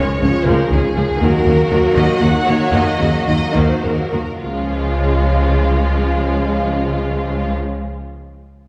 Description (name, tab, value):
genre	cinematic, epic orchestral film score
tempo	102-122 BPM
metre	3/4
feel	straight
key	Db major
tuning	A4 = 436 Hz
part	rich symphonic violin section	melody	0.0-7.5 s	F4 to Gb5	-25 LUFS	equal	none
part	rich studio violin section	second line	0.0-7.6 s	Bb3 to Gb4	-27 LUFS	equal	none
part	rich symphonic viola section	accompaniment	0.0-7.5 s	Db3 to Ab3	-25 LUFS	equal	none
part	dark French horn section	sustained chords	0.0-7.6 s	Ab3 to Ab4	-25 LUFS	equal	none
part	rich symphonic cello section	bass	0.0-7.6 s	Db2 to Eb2	-24 LUFS	equal	none
part	rich symphonic double bass section	bass	0.0-7.6 s	Db2 to Eb2	-22 LUFS	equal	none
room	wet concert hall reverb, RT60 1.8 s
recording	heard from further back in the room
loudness	-16 LUFS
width	mono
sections	0.0-4.4 A section; 4.4-8.0 B section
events	slowing down 0.5-4.4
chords	0.0 Db; 1.2 Ebm; 4.4 Db